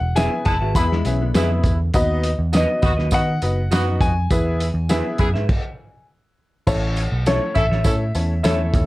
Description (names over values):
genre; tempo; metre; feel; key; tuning
uptempo 1960s-style soul; 101 BPM; 4/4; straight; A major; A4 = 440 Hz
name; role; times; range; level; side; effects
warm grand piano; melody; 0.0-8.9 s; C#5 to B5; -25 LUFS; left 2 dB; none
vintage muted picked electric bass; bass; 0.0-8.9 s; E1 to D#3; -21 LUFS; equal; none
clear upright piano; accompaniment; 0.2-8.8 s; A3 to F#5; -25 LUFS; left 1 dB; none
electric guitar through a small old amp; stabs; 0.2-8.6 s; F#4 to E5; -29 LUFS; right 3 dB; none
cloth-damped thuddy drum kit; drums; 0.2-8.9 s; crash cymbal, hi-hat, kick drum, snare drum; -21 LUFS; equal; none
tambourine; percussion; 0.2-8.9 s; none; -37 LUFS; right 4 dB; none
dark horn section; second line; 0.5-8.9 s; G#3 to A4; -27 LUFS; equal; none
vintage hollow-body jazz guitar; riff; 0.6-1.9 s; D3 to G#4; -28 LUFS; left 7 dB; none
room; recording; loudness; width
light reverb; dark, warm production; -17 LUFS; side -18 dB against mid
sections
0.0-6.7 A section; 6.7-8.9 A section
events
stop 5.5-6.7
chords
0.0 E; 1.9 B/D#; 4.3 E; 6.7 A